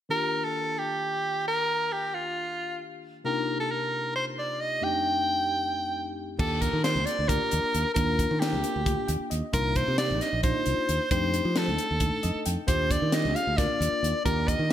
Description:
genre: electric jazz fusion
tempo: 267 BPM (eighths)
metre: 7/8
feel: straight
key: unclear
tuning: A4 = 440 Hz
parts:
  - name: bright soprano saxophone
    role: melody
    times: 0.1-14.7 s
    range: F4 to G5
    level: -27 LUFS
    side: equal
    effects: none
  - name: tine electric piano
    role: accompaniment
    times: 0.1-14.7 s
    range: F2 to G5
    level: -33 LUFS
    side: left 1 dB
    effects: overdrive, phaser
  - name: modern bright fingered electric bass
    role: bass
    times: 6.4-14.7 s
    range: Bb1 to F3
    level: -28 LUFS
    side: equal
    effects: none
  - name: crisp fusion drum kit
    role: drums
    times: 6.4-14.7 s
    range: crash cymbal, hi-hat, kick drum, snare drum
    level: -30 LUFS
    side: equal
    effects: gated reverb
room: moderate lush hall reverb, RT60 1.6 s, small room ambience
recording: bright 1980s-style digital production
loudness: -24 LUFS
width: side -11 dB against mid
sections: 0.1-6.4 A section; 6.4-14.7 B section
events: tine electric piano fill 8.9-9.5, 12.0-12.7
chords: 0.1 Ebmaj9; 3.2 Cm11; 4.8 F13; 6.4 Ebmaj9; 9.5 Cm11; 11.1 F13; 12.7 Ebmaj9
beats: | 0.10 0.33 0.55 0.78 1.00 1.23 1.45 | 1.67 1.90 2.12 2.35 2.57 2.80 3.02 | 3.25 3.47 3.70 3.92 4.14 4.37 4.59 | 4.82 5.04 5.27 5.49 5.72 5.94 6.17 | 6.39 6.62 6.84 7.06 7.29 7.51 7.74 | 7.96 8.19 8.41 8.64 8.86 9.09 9.31 | 9.53 9.76 9.98 10.21 10.43 10.66 10.88 | 11.11 11.33 11.55 11.78 12.01 12.23 12.45 | 12.68 12.90 13.13 13.35 13.58 13.80 14.03 | 14.25 14.48 14.70

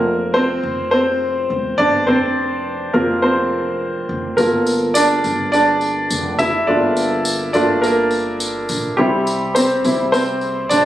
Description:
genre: piano-driven pop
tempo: 104 BPM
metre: 4/4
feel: straight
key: unclear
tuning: A4 = 440 Hz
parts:
  - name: clear concert grand piano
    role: accompaniment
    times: 0.0-10.8 s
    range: G3 to E5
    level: -15 LUFS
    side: equal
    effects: none
  - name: upright bass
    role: bass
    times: 0.0-10.8 s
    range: E1 to C2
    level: -27 LUFS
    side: equal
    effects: none
  - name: tambourine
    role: percussion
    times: 4.4-10.8 s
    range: none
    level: -26 LUFS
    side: left 1 dB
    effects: none
room: moderate large studio reverb, RT60 1.3 s, small room ambience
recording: recorded on a phone in the room, club reverb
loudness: -15 LUFS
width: side -13 dB against mid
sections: 0.0-10.8 A section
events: grand piano solo 0.0-10.8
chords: 0.0 Bbsus2; 4.4 Gm7; 9.0 C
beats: 0.35 0.92 1.50 | 2.07 2.65 3.23 3.80 | 4.38 4.95 5.53 6.11 | 6.68 7.26 7.83 8.41 | 8.98 9.56 10.14 10.71

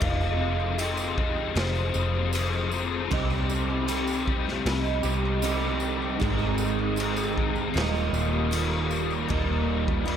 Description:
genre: rock, shoegaze and dream pop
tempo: 78 BPM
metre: 4/4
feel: straight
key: unclear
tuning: A4 = 441 Hz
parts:
  - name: pure breathy sine lead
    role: melody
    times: 0.0-2.7 s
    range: C5 to F5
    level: -35 LUFS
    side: right 3 dB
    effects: chorus, digital delay
  - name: picked twelve-string acoustic guitar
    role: arpeggios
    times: 0.0-10.2 s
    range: Eb4 to C5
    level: -37 LUFS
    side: right 9 dB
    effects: lush chorus, digital delay
  - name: cranked stack guitar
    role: riff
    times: 0.0-10.2 s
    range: Eb2 to G4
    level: -29 LUFS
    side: left 9 dB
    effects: overdrive, ensemble chorus
  - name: vintage muted fingered electric bass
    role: bass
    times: 0.0-10.2 s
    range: Eb1 to C2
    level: -29 LUFS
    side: equal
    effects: none
  - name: raw garage drum kit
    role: drums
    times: 0.0-10.2 s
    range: crash cymbal, kick drum, snare drum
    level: -31 LUFS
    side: equal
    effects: none
  - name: tambourine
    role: percussion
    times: 0.0-9.2 s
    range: none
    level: -42 LUFS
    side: right 11 dB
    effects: none
  - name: electric guitar through a small old amp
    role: riff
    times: 3.1-10.2 s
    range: Eb2 to G4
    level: -29 LUFS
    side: right 8 dB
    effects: reverse reverb
room: moderate concert hall reverb, RT60 2.2 s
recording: none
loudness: -24 LUFS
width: side -8 dB against mid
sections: 0.0-9.3 A section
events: none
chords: 0.0 Fm7; 3.1 Cm7; 6.2 Abmaj7; 7.7 Eb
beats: | 0.02 0.79 1.56 2.34 | 3.11 3.88 4.66 5.43 | 6.20 6.97 7.75 8.52 | 9.29 10.06

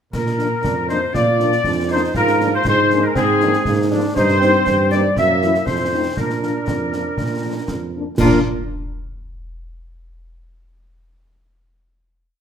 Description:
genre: military-style march for wind band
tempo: 119 BPM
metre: 2/4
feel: straight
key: Bb major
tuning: A4 = 439 Hz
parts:
  - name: dark trumpet section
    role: melody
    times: 0.1-8.4 s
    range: Ab4 to Fb5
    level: -21 LUFS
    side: left 1 dB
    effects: none
  - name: clear woodwind section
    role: second line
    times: 0.1-8.4 s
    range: F4 to Fb5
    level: -22 LUFS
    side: left 2 dB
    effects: none
  - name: mellow tuba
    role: bass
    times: 0.1-8.4 s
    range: F2 to Bb2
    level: -20 LUFS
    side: right 2 dB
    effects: none
  - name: concert snare drum, clash cymbals and concert bass drum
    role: drums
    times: 0.1-8.5 s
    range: none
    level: -27 LUFS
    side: left 1 dB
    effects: none
  - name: mellow French horn section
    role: accompaniment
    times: 0.4-8.4 s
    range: Fb3 to Fb4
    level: -25 LUFS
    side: left 5 dB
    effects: none
  - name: clear trombone section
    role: sustained chords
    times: 0.6-8.4 s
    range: F3 to F4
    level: -25 LUFS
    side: right 4 dB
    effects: none
room: wet large studio reverb, RT60 1.1 s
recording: none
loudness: -15 LUFS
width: side -8 dB against mid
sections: 0.1-8.2 A section; 8.2-9.2 final chord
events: none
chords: 0.1 Bb; 2.2 Bb7/Ab; 4.2 Eb/G; 5.2 Gb7; 5.7 F7; 6.2 Bb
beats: | 0.14 0.64 | 1.15 1.65 | 2.15 2.66 | 3.16 3.66 | 4.17 4.67 | 5.17 5.67 | 6.18 6.68 | 7.18 7.68 | 8.19

